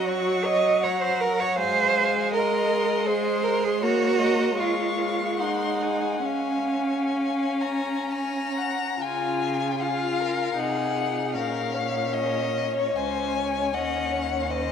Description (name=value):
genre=classical, slow romantic movement for string quartet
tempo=60-83 BPM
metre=3/4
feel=rubato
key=Db major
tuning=A4 = 439 Hz
part: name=warm violin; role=melody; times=0.0-14.7 s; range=Db5 to Db6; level=-30 LUFS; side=left 7 dB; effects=none
part: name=dark violin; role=second line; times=0.0-14.7 s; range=F4 to Bb5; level=-29 LUFS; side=left 3 dB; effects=none
part: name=rich viola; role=accompaniment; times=0.0-14.7 s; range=Gb3 to F4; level=-28 LUFS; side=left 2 dB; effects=none
part: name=rich cello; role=bass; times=0.0-14.7 s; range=Db2 to Eb5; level=-26 LUFS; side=right 6 dB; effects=none
room=wet cathedral reverb, RT60 5.5 s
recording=in a vast, echoing space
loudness=-22 LUFS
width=side -8 dB against mid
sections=0.0-9.0 A section; 9.0-14.7 B section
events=none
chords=0.0 Gb; 1.6 Ab; 3.8 Bbm; 4.6 Db/Ab; 5.4 Ab7; 6.3 Db; 11.3 Bbm7; 13.7 Ebm7